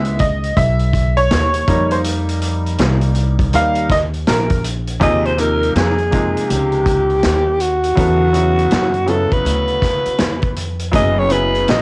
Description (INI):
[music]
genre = hip hop, jazz-hop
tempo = 81 BPM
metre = 4/4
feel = swing 63% on 16ths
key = unclear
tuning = A4 = 439 Hz
[part]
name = clear upright piano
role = accompaniment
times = 0.0-11.8 s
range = C3 to F5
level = -19 LUFS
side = equal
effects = cassette tape
[part]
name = upright bass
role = bass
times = 0.0-11.8 s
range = Gb1 to F#2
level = -18 LUFS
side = equal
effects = none
[part]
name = vintage drum kit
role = drums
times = 0.0-11.8 s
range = hi-hat, kick drum, snare drum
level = -19 LUFS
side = equal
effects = cassette tape
[part]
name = growling alto saxophone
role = melody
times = 5.0-11.8 s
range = Gb4 to Eb5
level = -16 LUFS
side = equal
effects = cassette tape
[sound]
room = little or no reverb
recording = home recording on cassette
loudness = -13 LUFS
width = side -27 dB against mid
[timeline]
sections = 0.0-5.0 A section; 5.0-11.8 B section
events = upright piano solo 0.0-5.0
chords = 0.0 Gb7sus4 (rootless); 1.7 F9sus4; 5.0 Eb9sus4; 8.0 E7sus2; 10.9 Gb9sus4